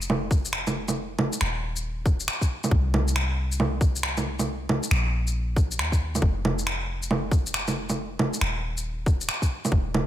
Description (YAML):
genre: future garage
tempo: 137 BPM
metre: 4/4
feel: swing 63% on 16ths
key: unclear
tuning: A4 = 440 Hz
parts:
  - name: soft 808-style bass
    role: bass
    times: 0.0-10.1 s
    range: Eb1 to Eb2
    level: -28 LUFS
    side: equal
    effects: sidechain pumping
  - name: electronic shaker, bongos and finger snaps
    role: drums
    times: 0.0-10.1 s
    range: none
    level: -26 LUFS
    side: right 1 dB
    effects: none
  - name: electronic kick drum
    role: drums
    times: 0.3-9.8 s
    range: none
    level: -22 LUFS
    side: equal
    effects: none
room: little or no reverb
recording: none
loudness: -23 LUFS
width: side -12 dB against mid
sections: 0.0-10.1 A section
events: none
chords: none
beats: 0.09 0.53 | 0.97 1.41 1.84 2.28 | 2.72 3.16 3.60 4.03 | 4.47 4.91 5.35 5.79 | 6.22 6.66 7.10 7.54 | 7.97 8.41 8.85 9.29 | 9.73